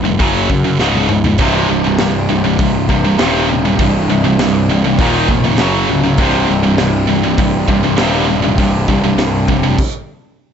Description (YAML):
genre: heavy metal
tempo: 100 BPM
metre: 4/4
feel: straight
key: C minor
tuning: A4 = 441 Hz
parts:
  - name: heavy high-gain guitar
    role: riff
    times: 0.0-9.8 s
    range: C2 to F#3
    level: -17 LUFS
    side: right 10 dB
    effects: distortion
  - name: tight distorted guitar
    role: riff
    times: 0.0-9.8 s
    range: C2 to F#3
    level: -17 LUFS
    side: left 9 dB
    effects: distortion
  - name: fuzz picked electric bass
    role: bass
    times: 0.0-9.8 s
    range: C1 to F#2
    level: -18 LUFS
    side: equal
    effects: overdrive
  - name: modern studio drum kit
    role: drums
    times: 0.2-9.9 s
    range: crash cymbal, hi-hat, kick drum, snare drum, toms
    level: -19 LUFS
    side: equal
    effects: none
  - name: high-gain distorted guitar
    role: riff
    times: 1.4-9.8 s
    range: C2 to F#3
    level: -17 LUFS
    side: right 1 dB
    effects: distortion
room: small room ambience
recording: nothing above 7.9 kHz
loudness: -11 LUFS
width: side -8 dB against mid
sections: 0.0-10.5 A section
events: drum fill 0.8-1.4; stop 9.8-10.5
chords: 0.2 F#5; 0.8 Db5; 1.4 Cm; 5.0 Eb5; 5.6 F#5; 6.2 Cm; 9.8 N.C.